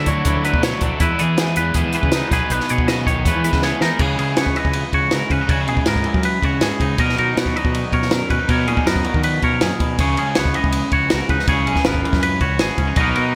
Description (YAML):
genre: math rock and midwest emo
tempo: 160 BPM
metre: 4/4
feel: straight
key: unclear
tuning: A4 = 440 Hz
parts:
  - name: twangy electric guitar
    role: accompaniment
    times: 0.0-13.3 s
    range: E2 to B4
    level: -27 LUFS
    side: equal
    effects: none
  - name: twangy electric guitar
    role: arpeggios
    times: 0.0-13.3 s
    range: E4 to D#5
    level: -25 LUFS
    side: equal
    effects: phaser, delay
  - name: crunchy overdriven guitar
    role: riff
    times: 0.0-13.3 s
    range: B2 to E4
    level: -28 LUFS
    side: equal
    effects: analog chorus
  - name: growling fingered electric bass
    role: bass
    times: 0.0-13.3 s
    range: G#1 to F#3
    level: -25 LUFS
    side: equal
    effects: overdrive
  - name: compact cocktail drum kit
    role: drums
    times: 0.1-13.2 s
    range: crash cymbal, hi-hat, kick drum, ride cymbal, snare drum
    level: -22 LUFS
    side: equal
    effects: gated reverb
room: light reverb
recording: bright 1980s-style digital production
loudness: -18 LUFS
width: mono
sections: 0.0-4.0 A section; 4.0-13.3 B section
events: drum fill 3.6-4.0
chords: 0.0 Dmaj9; 1.0 Emaj7; 2.3 B6; 3.3 Emaj7; 4.0 C#m9; 7.0 Bmaj7; 10.0 C#m9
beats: 0.27 0.64 | 1.01 1.39 1.76 2.13 | 2.51 2.88 3.25 3.63 | 4.00 4.38 4.75 5.12 | 5.50 5.87 6.25 6.62 | 7.00 7.37 7.74 8.12 | 8.49 8.87 9.24 9.61 | 9.99 10.36 10.73 11.11 | 11.48 11.85 12.23 12.60 | 12.97 13.35